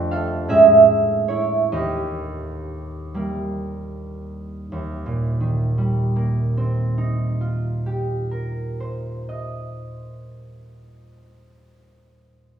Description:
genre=classical, solo harp piece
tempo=36-56 BPM (dotted quarters)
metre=6/8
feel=rubato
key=Eb lydian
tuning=A4 = 440 Hz
part: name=concert harp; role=solo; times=0.0-12.0 s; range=Eb2 to G5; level=-19 LUFS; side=right 2 dB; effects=none
room=wet recital hall reverb, RT60 1.5 s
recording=recorded in a church or concert hall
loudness=-18 LUFS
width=side -8 dB against mid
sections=0.0-4.7 A section; 4.7-10.5 B section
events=slowing down 0.0-4.7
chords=0.5 Amaj7; 1.7 Eb; 4.7 Eb69

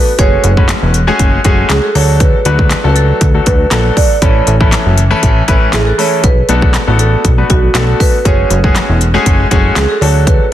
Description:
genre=dance-pop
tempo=119 BPM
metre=4/4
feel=straight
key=unclear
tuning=A4 = 440 Hz
part: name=marimba with medium mallets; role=melody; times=0.0-10.5 s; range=F#4 to D5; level=-17 LUFS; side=right 4 dB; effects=ping-pong delay
part: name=clear concert grand piano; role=accompaniment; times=0.0-10.4 s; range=E3 to B4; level=-15 LUFS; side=left 3 dB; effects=none
part: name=plucky analog bass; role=bass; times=0.2-10.4 s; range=E1 to D2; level=-12 LUFS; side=equal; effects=sidechain pumping
part: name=pop drum kit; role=drums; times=0.2-10.4 s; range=handclaps, hi-hat, kick drum, snare drum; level=-12 LUFS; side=equal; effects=soft clipping on snare
room=light reverb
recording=dense, heavily limited modern master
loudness=-8 LUFS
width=side -12 dB against mid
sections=0.0-10.5 A section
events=none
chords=0.2 F#madd9; 2.0 D; 4.2 A; 6.2 Bm7; 8.3 F#madd9; 10.0 D

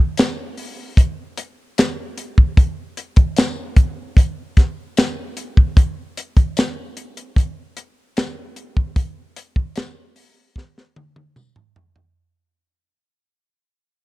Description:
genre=soul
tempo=75 BPM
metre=4/4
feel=straight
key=none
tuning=none
part: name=tight funk drum kit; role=drums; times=0.2-12.1 s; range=hi-hat, kick drum, snare drum, toms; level=-14 LUFS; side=equal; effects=none
part: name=tambourine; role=percussion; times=0.2-11.5 s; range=none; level=-34 LUFS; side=left 5 dB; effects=none
room=little or no reverb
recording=dark, warm production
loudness=-17 LUFS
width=side -19 dB against mid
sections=0.0-5.8 A section; 5.8-12.2 B section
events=fade-out 5.8-12.2; drum fill 10.6-12.2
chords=none

